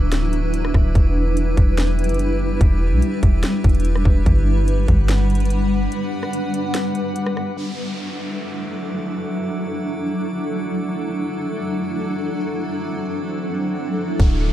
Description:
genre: hip hop, atmospheric cloud-rap.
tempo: 145 BPM.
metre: 4/4.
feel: half-time.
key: D major.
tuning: A4 = 440 Hz.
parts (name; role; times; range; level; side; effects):
granular cloud pad; sustained chords; 0.0-14.5 s; F#3 to F#5; -23 LUFS; equal; built-in reverb, sidechain pumping, low-pass filter.
soft 808-style bass; bass; 0.0-5.9, 14.2-14.5 s; D1 to B1; -18 LUFS; equal; none.
drifting glass-harmonics texture; texture; 0.0-14.5 s; F#4 to D6; -34 LUFS; right 1 dB; chorus, built-in reverb.
trap drum kit; drums; 0.1-7.5, 14.2-14.3 s; hi-hat, kick drum, rim click, snare drum; -18 LUFS; equal; none.
downlifter and swell; sound effects; 7.6-14.5 s; none; -36 LUFS; right 1 dB; none.
room: digital ambience.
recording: dark, warm production.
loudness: -18 LUFS.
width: side -13 dB against mid.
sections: 0.0-7.6 A section; 7.6-14.2 B section.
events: break 5.9-7.6; filter sweep on ambient pad 7.6-14.2; swell 13.1-14.2.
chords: 0.0 Dadd9; 1.0 Em7; 4.3 Gmaj7; 7.6 Dadd9.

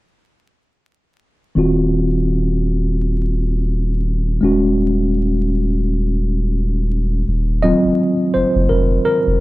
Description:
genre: R&B, neo-soul.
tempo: 84 BPM.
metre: 4/4.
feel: swing 59% on 16ths.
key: Eb dorian.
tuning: A4 = 440 Hz.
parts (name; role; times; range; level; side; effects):
mellow tine electric piano; accompaniment; 1.6-9.4 s; Eb3 to Eb5; -17 LUFS; equal; medium stereo tremolo.
saturated sub bass; bass; 1.6-9.4 s; Eb1 to Gb1; -18 LUFS; equal; none.
room: little or no reverb.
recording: dry, close 1970s-style studio recording, vinyl crackle.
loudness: -15 LUFS.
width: side -18 dB against mid.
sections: 1.6-7.3 A section; 7.3-9.4 B section.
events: tine electric piano solo 7.3-9.4.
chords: 1.6 Ebm69; 4.4 Ab7sus4/Eb; 7.3 Ebm69.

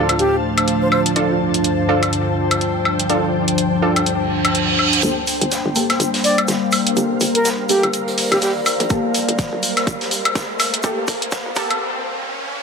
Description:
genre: bass house.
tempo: 124 BPM.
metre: 4/4.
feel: swing 58% on 16ths.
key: G minor.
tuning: A4 = 440 Hz.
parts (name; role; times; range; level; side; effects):
sweeping resonant pad; sustained chords; 0.0-12.6 s; D2 to Bb3; -22 LUFS; left 1 dB; chorus, phaser, sidechain pumping.
orchestra-hit-like synth stab; stabs; 0.0-11.7 s; Bb3 to A4; -23 LUFS; right 1 dB; built-in reverb, sidechain pumping, ping-pong delay.
ethereal airy pad; texture; 0.0-11.8 s; D4 to A5; -23 LUFS; left 1 dB; ensemble chorus, built-in reverb, sidechain pumping.
electronic hi-hat and woodblock; drums; 0.1-11.8 s; none; -21 LUFS; left 1 dB; none.
breathy bright concert flute; melody; 0.2-1.0, 6.2-8.5 s; G4 to D5; -21 LUFS; equal; ping-pong delay.
reverse cymbal and riser; sound effects; 4.3-12.6 s; none; -25 LUFS; right 4 dB; none.
hollow knocking FM bass; bass; 5.0-11.8 s; F1 to Bb1; -24 LUFS; equal; overdrive, sidechain pumping, high-pass filter.
raw garage drum kit; drums; 5.0-11.7 s; hi-hat, shaker, snare drum; -28 LUFS; right 1 dB; high-pass filter on hats, high-pass filter on snare, high-pass filter on perc, high-pass filter on room.
electronic kick drum; drums; 8.9-11.7 s; none; -21 LUFS; equal; none.
room: moderate lush hall reverb, RT60 2.4 s.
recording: high-pass filter.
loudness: -16 LUFS.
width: side -5 dB against mid.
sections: 0.0-5.0 A section; 5.0-12.6 B section.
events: filter sweep on analog synth pad 0.0-5.0; reverse cymbal 4.3-5.0; build-up 5.0-12.6; riser 5.0-12.6; filter sweep on synth stab 5.0-12.6; drum fill 8.9-11.8; break 11.8-12.6.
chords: 0.0 Dm; 5.0 Gmadd9.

